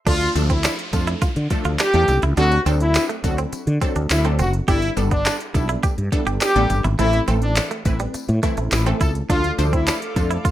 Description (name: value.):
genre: dance-pop.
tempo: 104 BPM.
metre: 4/4.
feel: straight.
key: unclear.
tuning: A4 = 442 Hz.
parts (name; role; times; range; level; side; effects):
clear horn section; melody; 0.1-10.3 s; D4 to A4; -22 LUFS; equal; sidechain pumping, plate reverb.
wide unison pluck; accompaniment; 0.1-10.5 s; E3 to C5; -26 LUFS; equal; phaser, sidechain pumping.
direct-recorded clean electric guitar; riff; 0.1-10.5 s; G3 to G4; -27 LUFS; right 5 dB; wide subtle chorus.
mellow fretless electric bass; bass; 0.1-10.5 s; F#1 to D3; -20 LUFS; equal; sidechain pumping.
smooth R&B drum kit; drums; 0.1-10.5 s; crash cymbal, handclaps, hi-hat, kick drum, snare drum; -22 LUFS; equal; none.
tambourine; percussion; 0.1-10.5 s; none; -37 LUFS; left 7 dB; none.
downlifter; sound effects; 0.1-4.7 s; none; -36 LUFS; equal; none.
chorused pulse-width pad; sustained chords; 9.3-10.5 s; A4 to D6; -32 LUFS; equal; sidechain pumping, plate reverb.
room: light reverb.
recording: rough home demo mix, high-pass filter.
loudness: -17 LUFS.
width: side -13 dB against mid.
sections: 0.1-10.5 A section.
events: drop 0.1-10.5.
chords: 0.1 Dm; 2.4 D7; 4.7 Gadd9; 7.0 Am; 9.3 Dm.